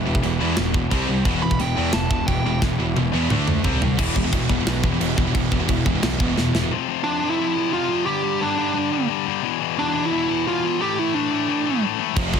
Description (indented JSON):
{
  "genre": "heavy metal",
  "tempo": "176 BPM",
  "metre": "4/4",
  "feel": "straight",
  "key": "E phrygian",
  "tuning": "A4 = 440 Hz",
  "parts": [
    { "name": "rich symphonic string section", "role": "sustained chords", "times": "0.0-6.7, 12.2-12.4 s", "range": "C3 to D5", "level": "-34 LUFS", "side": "right 1 dB", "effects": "none" },
    { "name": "distorted electric guitar", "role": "riff", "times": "0.0-6.7, 12.2-12.4 s", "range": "E2 to D4", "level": "-28 LUFS", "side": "equal", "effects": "distortion" },
    { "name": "high-gain distorted guitar", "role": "riff", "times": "0.0-12.4 s", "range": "E2 to D4", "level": "-24 LUFS", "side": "left 14 dB", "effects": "distortion" },
    { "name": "scooped high-gain guitar", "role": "riff", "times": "0.0-6.7, 12.2-12.4 s", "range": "E2 to D4", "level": "-27 LUFS", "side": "right 12 dB", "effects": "distortion" },
    { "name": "fuzz picked electric bass", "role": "bass", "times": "0.0-6.7, 12.2-12.4 s", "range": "E1 to E2", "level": "-25 LUFS", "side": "right 1 dB", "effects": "overdrive" },
    { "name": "tight metal drum kit", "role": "drums", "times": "0.1-6.6, 12.2-12.4 s", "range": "china cymbal, crash cymbal, kick drum, snare drum, toms", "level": "-24 LUFS", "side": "right 1 dB", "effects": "soft clipping on kick" },
    { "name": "dark smooth lead guitar", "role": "melody", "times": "1.4-2.6, 7.0-11.8 s", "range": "D4 to B5", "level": "-24 LUFS", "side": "right 4 dB", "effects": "overdrive, ping-pong delay" }
  ],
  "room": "light reverb",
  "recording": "dense, heavily limited modern master",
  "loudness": "-19 LUFS",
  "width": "side -7 dB against mid",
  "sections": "0.0-4.0 A section; 4.0-6.7 B section; 6.7-12.4 C section",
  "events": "lead electric guitar solo 0.0-4.0; drum fill 2.6-4.0, 6.4-6.7",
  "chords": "0.0 Em; 0.9 C5; 1.3 Em; 3.3 D5; 3.6 C5; 4.0 Em; 6.7 F5; 8.1 G5; 9.4 E5; 10.8 A5"
}